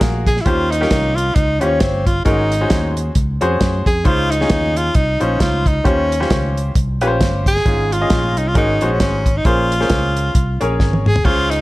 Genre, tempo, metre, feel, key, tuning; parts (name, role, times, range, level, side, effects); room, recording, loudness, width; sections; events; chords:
uptempo gospel; 134 BPM; 4/4; swing 58% on 8ths; Db major; A4 = 438 Hz
clear baby grand piano; accompaniment; 0.0-11.6 s; Ab2 to Eb5; -20 LUFS; left 1 dB
fingered electric bass; bass; 0.0-11.6 s; G1 to Gb2; -20 LUFS; equal
warm soul drum kit; drums; 0.0-11.6 s; crash cymbal, hi-hat, kick drum, snare drum, toms; -18 LUFS; equal
clear tenor saxophone; melody; 0.3-11.6 s; C4 to Ab4; -19 LUFS; equal
light reverb, studio reverb; -14 LUFS; side -18 dB against mid
0.0-11.6 A section
drum fill 10.8-11.2
0.5 Eb13; 2.3 Ab9sus4; 4.1 Dbmaj9; 5.9 Eb13; 7.7 Db/Ab; 8.6 Ab9sus4; 9.5 Bbm9